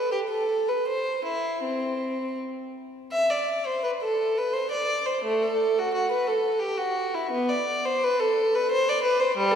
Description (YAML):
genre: classical, baroque-style suite movement for unaccompanied violin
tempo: 77-90 BPM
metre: 3/4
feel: rubato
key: C major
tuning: A4 = 441 Hz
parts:
  - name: warm violin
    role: solo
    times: 0.0-9.6 s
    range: G3 to E5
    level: -23 LUFS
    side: equal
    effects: none
room: wet church reverb, RT60 2.7 s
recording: heard from further back in the room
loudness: -23 LUFS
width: side -8 dB against mid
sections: 0.0-3.2 A section; 3.2-9.6 A section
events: none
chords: none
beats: 0.12 | 0.89 1.66 2.41 | 3.16 3.87 4.56 | 5.26 5.95 6.62 | 7.33 8.03 8.70 | 9.37